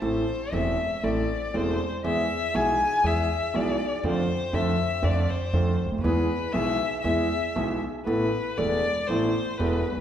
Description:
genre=tango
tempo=119 BPM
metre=4/4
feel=rubato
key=A harmonic minor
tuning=A4 = 441 Hz
part: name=warm violin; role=second line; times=0.0-10.0 s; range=B4 to G#5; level=-28 LUFS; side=left 3 dB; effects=none
part: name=warm concert grand piano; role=accompaniment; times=0.0-10.0 s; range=E1 to A4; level=-26 LUFS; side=right 1 dB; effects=none
part: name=upright bass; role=bass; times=0.0-10.0 s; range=E1 to F2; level=-31 LUFS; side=equal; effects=none
room=wet recital hall reverb, RT60 1.4 s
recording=recorded in a church or concert hall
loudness=-23 LUFS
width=side -10 dB against mid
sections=0.0-10.0 A section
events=violin solo 0.0-10.0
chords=0.0 Am; 2.0 E; 4.0 Dm7/F; 6.0 E; 8.1 Asus2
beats=| 0.02 0.53 1.04 1.54 | 2.04 2.54 3.04 3.54 | 4.04 4.54 5.04 5.54 | 6.04 6.54 7.05 7.56 | 8.07 8.59 9.10 9.60

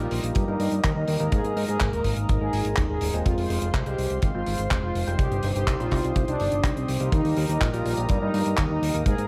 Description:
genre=italo disco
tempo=124 BPM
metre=4/4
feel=straight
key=Eb major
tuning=A4 = 440 Hz
part: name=analog synth brass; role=melody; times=0.0-9.3 s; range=C4 to Bb4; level=-32 LUFS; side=equal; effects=chorus, digital delay
part: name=warm analog pad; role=sustained chords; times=0.0-9.3 s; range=Ab3 to Eb6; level=-35 LUFS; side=equal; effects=chorus
part: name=overdriven tine electric piano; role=stabs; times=0.0-9.3 s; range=Ab2 to C5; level=-35 LUFS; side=equal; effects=phaser
part: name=fat analog bass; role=bass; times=0.0-9.3 s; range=Eb1 to Ab2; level=-30 LUFS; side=equal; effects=none
part: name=damped 70s drum kit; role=drums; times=0.1-9.3 s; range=handclaps, hi-hat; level=-35 LUFS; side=equal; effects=studio reverb
part: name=kick drum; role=drums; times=0.4-9.2 s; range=none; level=-27 LUFS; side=equal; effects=studio reverb
room=light reverb, studio ambience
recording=vinyl crackle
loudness=-25 LUFS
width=mono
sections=0.0-9.3 A section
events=none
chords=0.0 Eb; 1.3 Absus2; 3.3 Fm; 5.2 Cm; 7.1 Eb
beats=0.35 0.84 | 1.32 1.80 2.29 2.77 | 3.26 3.74 4.22 4.71 | 5.19 5.68 6.16 6.64 | 7.13 7.61 8.10 8.58 | 9.06

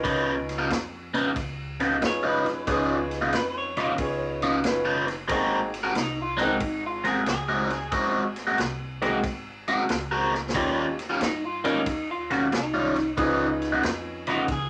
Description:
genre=electric blues shuffle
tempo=92 BPM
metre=4/4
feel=swing 67% on 8ths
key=unclear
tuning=A4 = 439 Hz
part: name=bright upright piano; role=accompaniment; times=0.0-14.7 s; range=Bb3 to Cb5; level=-32 LUFS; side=equal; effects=none
part: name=raw garage guitar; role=riff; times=0.0-14.4 s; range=Db3 to Bb4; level=-28 LUFS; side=equal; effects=overdrive, phaser
part: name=upright bass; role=bass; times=0.0-14.7 s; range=Gb1 to G2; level=-41 LUFS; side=equal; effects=none
part: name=vintage drum kit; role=drums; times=0.0-14.7 s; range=kick drum, ride cymbal, snare drum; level=-35 LUFS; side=equal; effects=none
part: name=electric guitar through a small old amp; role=melody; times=2.1-14.7 s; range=Eb4 to Db5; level=-33 LUFS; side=equal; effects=harmonic tremolo
room=wet small room reverb, RT60 0.5 s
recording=none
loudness=-26 LUFS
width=mono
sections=0.0-14.7 A section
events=clean electric guitar solo 0.0-14.7; drum fill 10.2-10.6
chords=0.1 Db9; 5.3 Ab9; 10.6 Eb9; 13.2 Db9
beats=| 0.05 0.71 1.36 2.02 | 2.68 3.33 3.99 4.64 | 5.30 5.96 6.61 7.27 | 7.92 8.58 9.24 9.89 | 10.55 11.21 11.86 12.52 | 13.17 13.83 14.48

